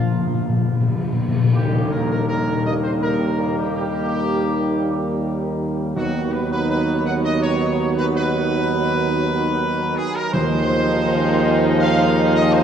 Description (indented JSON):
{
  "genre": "classical, ceremonial fanfare",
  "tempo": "82 BPM",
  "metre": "3/4",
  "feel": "straight",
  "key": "Eb major",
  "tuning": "A4 = 442 Hz",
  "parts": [
    { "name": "mellow trumpet section", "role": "melody", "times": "0.0-12.6 s", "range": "F4 to F#5", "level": "-25 LUFS", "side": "equal", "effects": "none" },
    { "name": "warm French horn section", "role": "sustained chords", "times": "0.0-12.6 s", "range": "F3 to Eb4", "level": "-24 LUFS", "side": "left 3 dB", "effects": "none" },
    { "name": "timpani", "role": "percussion", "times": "0.0-1.5, 6.0-11.4 s", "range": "Bb2 to D#3", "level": "-22 LUFS", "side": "left 2 dB", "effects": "none" },
    { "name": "warm trombone section", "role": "sustained chords", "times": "1.5-12.6 s", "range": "Eb3 to G3", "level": "-24 LUFS", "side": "right 3 dB", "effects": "none" },
    { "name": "mellow tuba", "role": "bass", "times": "1.5-12.6 s", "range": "Eb2 to D#2", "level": "-23 LUFS", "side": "right 2 dB", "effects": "none" },
    { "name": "tam-tam", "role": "percussion", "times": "1.5-4.5 s", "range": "none", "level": "-30 LUFS", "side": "left 1 dB", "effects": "none" }
  ],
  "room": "wet cathedral reverb, RT60 4.3 s",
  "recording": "dark, warm production",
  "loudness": "-17 LUFS",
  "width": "side -8 dB against mid",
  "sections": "0.0-1.5 A section; 1.5-12.6 B section",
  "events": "timpani fill 0.0-1.5; band accent 1.5-2.3",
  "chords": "0.0 Bb5; 1.5 Eb; 6.0 B/D#; 10.3 Ab6/Eb"
}